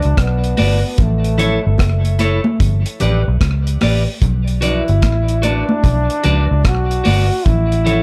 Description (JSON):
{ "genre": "roots reggae", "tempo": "74 BPM", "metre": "4/4", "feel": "swing 64% on 16ths", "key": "B minor", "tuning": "A4 = 440 Hz", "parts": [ { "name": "warm trombone", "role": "melody", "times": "0.0-8.0 s", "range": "A3 to F#4", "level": "-24 LUFS", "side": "equal", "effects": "tape echo" }, { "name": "deep reggae drum kit", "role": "drums", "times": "0.0-8.0 s", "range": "hi-hat, kick drum, rim click", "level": "-20 LUFS", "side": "equal", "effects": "none" }, { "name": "vintage muted fingered electric bass", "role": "bass", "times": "0.1-8.0 s", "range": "F#1 to C#2", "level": "-18 LUFS", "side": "equal", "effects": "none" }, { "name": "clean electric guitar", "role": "accompaniment", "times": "0.6-8.0 s", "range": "E4 to D5", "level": "-25 LUFS", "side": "equal", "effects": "spring reverb, tape echo" }, { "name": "congas", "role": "percussion", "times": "0.6-8.0 s", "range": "none", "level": "-25 LUFS", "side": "equal", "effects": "none" } ], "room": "little or no reverb", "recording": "none", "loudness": "-15 LUFS", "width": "mono", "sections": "0.0-8.0 A section", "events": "none", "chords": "0.0 Bm; 1.0 A; 2.6 G; 4.2 Bm; 7.5 A" }